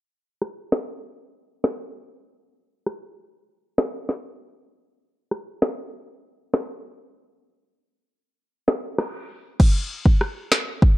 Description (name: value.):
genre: dancehall.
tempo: 98 BPM.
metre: 4/4.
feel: straight.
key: none.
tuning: none.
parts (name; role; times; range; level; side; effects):
afro-pop drum kit; drums; 0.4-11.0 s; crash cymbal, finger snaps, kick drum, rim click, snare drum; -20 LUFS; equal; vintage 12-bit sampler grit.
room: digital ambience.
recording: low-pass filter.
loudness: -22 LUFS.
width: side -18 dB against mid.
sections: 0.0-9.6 A section; 9.6-11.0 B section.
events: filter sweep 0.0-9.6.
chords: none.